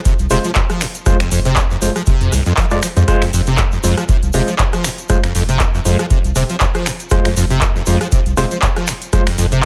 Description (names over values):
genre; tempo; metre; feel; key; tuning
acid house; 119 BPM; 4/4; swing 55% on 16ths; F minor; A4 = 440 Hz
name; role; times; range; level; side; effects
liquid acid bass; riff; 0.1-9.6 s; F1 to F3; -21 LUFS; equal; tube saturation, ensemble chorus, delay
electro analog drum machine; drums; 0.1-9.7 s; finger snaps, handclaps, hi-hat, rim click; -23 LUFS; equal; none
electronic kick drum; drums; 0.1-9.2 s; none; -19 LUFS; equal; none
tube shaker; percussion; 0.1-9.6 s; none; -30 LUFS; equal; none
saturated sub bass; bass; 0.2-9.7 s; Eb1 to F2; -22 LUFS; equal; tube saturation, sidechain pumping
overdriven tine electric piano; stabs; 0.3-9.2 s; Ab3 to D5; -24 LUFS; equal; medium tremolo, delay
room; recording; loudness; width
little or no reverb; none; -15 LUFS; mono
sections
0.0-9.7 A section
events
none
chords
0.0 Fm